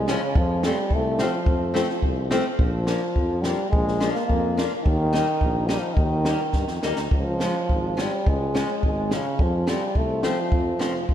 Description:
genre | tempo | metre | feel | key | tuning
alpine folk, alpine dance band | 106 BPM | 2/4 | rubato | unclear | A4 = 439 Hz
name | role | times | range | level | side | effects
clear euphonium | melody | 0.0-11.1 s | Db3 to Bb3 | -25 LUFS | equal | ping-pong delay
warm tuba | bass | 0.0-11.1 s | F1 to G2 | -27 LUFS | equal | none
picked old ladder-braced acoustic guitar | accompaniment | 0.1-10.9 s | F3 to Eb4 | -29 LUFS | left 2 dB | none
compact cocktail drum kit | drums | 0.1-11.1 s | kick drum, snare drum | -24 LUFS | equal | none
room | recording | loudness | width
moderate lush hall reverb, RT60 2.0 s | dreamy mix soaked in reverb, lossy compression artefacts | -20 LUFS | side -10 dB against mid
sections
0.0-7.1 A section; 7.1-11.1 A section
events
drum fill 6.5-7.1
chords
0.3 F; 2.6 Bb; 4.9 Eb; 7.1 Db; 9.4 F

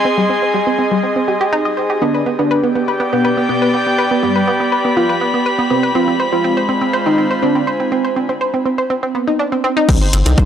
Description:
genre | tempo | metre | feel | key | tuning
melodic techno | 122 BPM | 4/4 | straight | unclear | A4 = 436 Hz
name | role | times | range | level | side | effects
analog pluck | arpeggios | 0.0-10.4 s | G3 to Eb5 | -17 LUFS | right 1 dB | chorus, sidechain pumping, tape echo
airy breathy pad | texture | 0.0-10.5 s | Ab3 to C6 | -18 LUFS | equal | chorus, sidechain pumping
wide unison lead | melody | 2.0-10.4 s | G3 to F4 | -19 LUFS | equal | sidechain pumping, analog delay
round analog bass | bass | 9.9-10.5 s | G1 to C2 | -14 LUFS | left 1 dB | sidechain pumping
electronic kick drum | drums | 9.9-10.5 s | none | -13 LUFS | left 1 dB | overdrive
punchy analog drum machine | drums | 9.9-10.5 s | crash cymbal, hi-hat | -22 LUFS | left 3 dB | overdrive
room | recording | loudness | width
light reverb, digital ambience | dry, gritty hardware recording | -13 LUFS | side -9 dB against mid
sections
0.0-9.9 A section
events
none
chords
0.0 Abmaj7; 2.0 G; 6.0 Fm; 9.9 Cm

